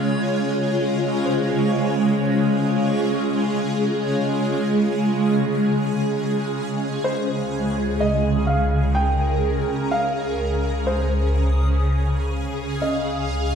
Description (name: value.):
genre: ambient.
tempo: 63 BPM.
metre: 3/4.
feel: straight.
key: Db major.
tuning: A4 = 440 Hz.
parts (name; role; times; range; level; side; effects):
shimmering ambient pad; sustained chords; 0.0-13.6 s; Db3 to F5; -21 LUFS; equal; chorus, built-in reverb, phaser.
soft synth bell; arpeggios; 0.0-10.0 s; C5 to Eb5; -39 LUFS; left 3 dB; none.
analog drone; drone; 0.0-13.6 s; Db3 to Db4; -32 LUFS; right 1 dB; chorus.
backwards swelling texture; texture; 0.0-13.6 s; Db5 to Eb6; -34 LUFS; equal; built-in reverb.
felt-muted upright piano; melody; 7.0-13.6 s; C5 to G5; -26 LUFS; equal; tape echo.
deep rumbling drone; bass; 7.7-13.6 s; Db2; -23 LUFS; equal; built-in reverb, phaser.
room: wet concert hall reverb, RT60 2.0 s.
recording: dark, warm production.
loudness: -19 LUFS.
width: side -7 dB against mid.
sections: 0.0-7.1 A section; 7.1-13.6 B section.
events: none.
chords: 0.0 Dbmaj7; 7.1 Abadd9/Db; 12.8 Dbadd9.